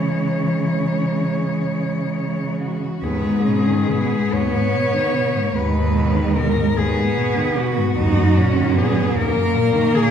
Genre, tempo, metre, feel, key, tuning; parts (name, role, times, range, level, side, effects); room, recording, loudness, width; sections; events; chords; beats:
classical, lyrical piece for cello ensemble; 45-51 BPM (dotted quarters); 12/8; rubato; C# minor, G# minor from 3.0 s; A4 = 439 Hz
rich cello; melody; 0.0-10.1 s; F#4 to C#5; -24 LUFS; left 5 dB
rich cello; second line; 0.0-10.1 s; G#3 to D#4; -23 LUFS; right 4 dB
rich cello; accompaniment; 0.0-10.1 s; D#2 to E3; -22 LUFS; left 1 dB
rich cello; bass; 0.0-9.0 s; D#2 to C#3; -22 LUFS; equal
wet scoring stage reverb, RT60 1.9 s; heard from further back in the room; -17 LUFS; side -8 dB against mid
0.0-3.0 A section; 3.0-10.1 B section
0.0 C#m; 3.0 G#m/D#; 8.0 D#m
0.44 1.73 | 3.03 4.33 5.56 6.76 | 7.98 9.16